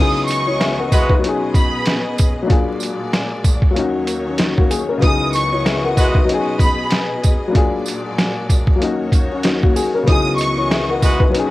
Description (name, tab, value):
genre	hip hop, boom-bap hip-hop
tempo	95 BPM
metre	4/4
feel	swing 58% on 16ths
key	C# dorian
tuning	A4 = 440 Hz
part	rich studio violin section	melody	0.0-10.9 s	B5 to D#6	-22 LUFS	equal	cassette tape, analog delay
part	warm upright piano	accompaniment	0.0-11.5 s	C#3 to F#5	-19 LUFS	left 3 dB	cassette tape
part	bright studio string section	sustained chords	0.0-11.5 s	C#2 to D#5	-27 LUFS	equal	cassette tape
part	boom bap sampler-style drum kit	drums	0.3-11.5 s	hi-hat, kick drum, snare drum	-16 LUFS	equal	cassette tape
part	tambourine	percussion	0.3-11.2 s	none	-30 LUFS	right 8 dB	none
part	warm trumpet section	stabs	0.9-1.1, 6.0-6.2, 11.0-11.2 s	G#3 to B4	-23 LUFS	right 1 dB	cassette tape, analog delay
room	light reverb, small room ambience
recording	home recording on cassette, vinyl crackle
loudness	-14 LUFS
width	side -17 dB against mid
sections	0.0-11.5 A section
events	none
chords	0.0 C#m11; 1.2 B6; 2.5 A#7b13; 3.8 D#m7; 5.0 C#m11; 6.3 B6; 7.5 A#7b13; 8.8 D#m7; 10.1 C#m11